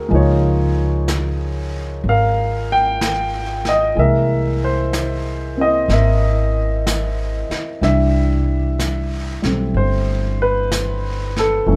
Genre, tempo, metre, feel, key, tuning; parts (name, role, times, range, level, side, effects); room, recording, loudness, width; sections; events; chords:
jazz ballad; 62 BPM; 4/4; swing 68% on 8ths; C major from 7.8 s; A4 = 441 Hz
warm upright piano; accompaniment; 0.0-11.8 s; E3 to G5; -21 LUFS; equal
upright bass; bass; 0.0-11.8 s; F#1 to Db2; -21 LUFS; equal
vintage brush drum kit; drums; 0.1-11.8 s; brushed snare drum, hi-hat, snare drum; -30 LUFS; equal
light reverb; -18 LUFS; mono
0.0-7.8 A section; 7.8-11.8 B section
0.1 Db6; 4.0 Caug7; 7.8 Cmaj9